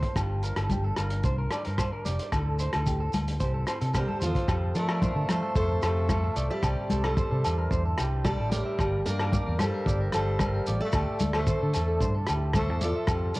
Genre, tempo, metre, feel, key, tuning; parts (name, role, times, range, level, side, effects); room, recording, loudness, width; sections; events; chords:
highlife guitar band; 112 BPM; 4/4; straight; A4 = 440 Hz
flamenco guitar; accompaniment; 0.0-13.4 s; F2 to A4; -40 LUFS; left 2 dB
electric guitar at the edge of break-up; arpeggios; 0.0-13.4 s; G4 to E5; -35 LUFS; right 2 dB; vibrato effect, tape echo
vintage drum kit; drums; 0.0-13.4 s; hi-hat, kick drum, rim click; -32 LUFS; equal
fingered electric bass; bass; 0.2-13.4 s; F1 to F3; -28 LUFS; equal
agogo bells; percussion; 0.2-13.2 s; -37 LUFS; left 2 dB
congas; percussion; 0.2-13.2 s; -34 LUFS; left 2 dB
shekere; percussion; 0.2-13.4 s; -36 LUFS; right 2 dB
picked steel-string acoustic guitar; melody; 3.9-13.4 s; F4 to D5; -32 LUFS; equal; cassette tape
growling tenor saxophone; second line; 4.0-13.3 s; F3 to Bb3; -37 LUFS; left 2 dB
mellow accordion; sustained chords; 4.5-13.4 s; C5 to C6; -43 LUFS; right 2 dB
small room ambience; home recording on cassette; -25 LUFS; side -20 dB against mid
0.0-4.5 A section; 4.5-13.4 B section
drum fill 3.9-4.5
0.2 Gm7; 2.3 Dsus2; 3.4 C; 6.6 Cadd9; 8.8 Gm7; 10.9 Dsus2